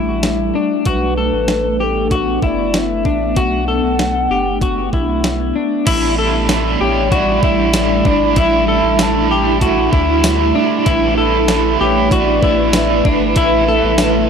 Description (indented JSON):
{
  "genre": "dream pop",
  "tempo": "96 BPM",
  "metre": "4/4",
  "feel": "straight",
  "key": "unclear",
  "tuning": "A4 = 443 Hz",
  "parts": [
    { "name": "ethereal airy pad", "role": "sustained chords", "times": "0.0-14.3 s", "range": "G3 to C#5", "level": "-19 LUFS", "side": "equal", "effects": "ensemble chorus, built-in reverb" },
    { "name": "electric guitar at the edge of break-up", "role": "arpeggios", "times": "0.0-14.3 s", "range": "D4 to A4", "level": "-18 LUFS", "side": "left 4 dB", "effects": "analog chorus, tape echo" },
    { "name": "saturated sub bass", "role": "bass", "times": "0.0-14.3 s", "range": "F#1 to D2", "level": "-21 LUFS", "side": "equal", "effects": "none" },
    { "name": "crisp 8-bit digital drum machine", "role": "drums", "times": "0.2-14.1 s", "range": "crash cymbal, hi-hat, kick drum, snare drum, tambourine", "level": "-18 LUFS", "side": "equal", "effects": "none" },
    { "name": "hollow clarinet-like synth lead", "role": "melody", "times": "0.9-14.3 s", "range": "A4 to A5", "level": "-21 LUFS", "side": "equal", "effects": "chorus, tape echo" },
    { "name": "biting overdriven guitar", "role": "accompaniment", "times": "5.9-14.3 s", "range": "A2 to E4", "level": "-19 LUFS", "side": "right 7 dB", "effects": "tremolo, lush chorus" }
  ],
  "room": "digital ambience",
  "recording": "dry, gritty hardware recording",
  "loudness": "-12 LUFS",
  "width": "side -6 dB against mid",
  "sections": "0.0-5.9 A section; 5.9-14.3 B section",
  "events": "none",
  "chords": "0.0 A7sus4; 0.9 Bm7; 5.9 A7sus4; 10.9 G6"
}